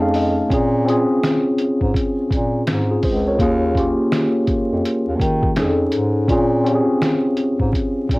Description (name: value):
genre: lo-fi hip hop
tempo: 83 BPM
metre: 4/4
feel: swing 63% on 16ths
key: Bb dorian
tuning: A4 = 440 Hz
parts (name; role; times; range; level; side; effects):
- mellow tine electric piano; accompaniment; 0.0-8.2 s; G#3 to A5; -18 LUFS; equal; medium stereo tremolo, cassette tape
- warm bass clarinet; bass; 0.0-8.2 s; Db2 to Eb3; -21 LUFS; equal; none
- lo-fi sampler-style drum kit; drums; 0.1-8.2 s; finger snaps, hi-hat, kick drum, snare drum; -22 LUFS; equal; cassette tape
room: moderate studio reverb, RT60 0.6 s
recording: home recording on cassette, vinyl crackle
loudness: -16 LUFS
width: side -23 dB against mid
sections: 0.0-8.2 A section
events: tine electric piano fill 0.0-0.5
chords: 0.0 F7alt; 0.5 Bbm9; 3.4 Eb9sus4; 5.6 F7alt; 6.3 Bbm9